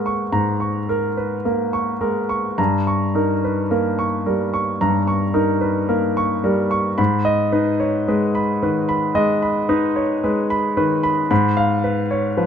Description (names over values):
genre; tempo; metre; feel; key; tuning
classical, romantic nocturne for solo piano; 53-56 BPM; 4/4; rubato; G# minor; A4 = 440 Hz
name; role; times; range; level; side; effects
warm concert grand piano; solo; 0.0-12.5 s; G2 to C#6; -17 LUFS; equal; none
room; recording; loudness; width
light reverb; close, detailed microphones; -17 LUFS; side -8 dB against mid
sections
0.0-12.5 A section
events
none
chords
0.0 G#sus24; 2.6 D#7/G; 7.0 G#m; 11.3 Fdim/Ab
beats
0.33 1.46 | 2.58 3.71 4.81 5.89 | 6.99 8.07 9.15 10.23 | 11.30 12.38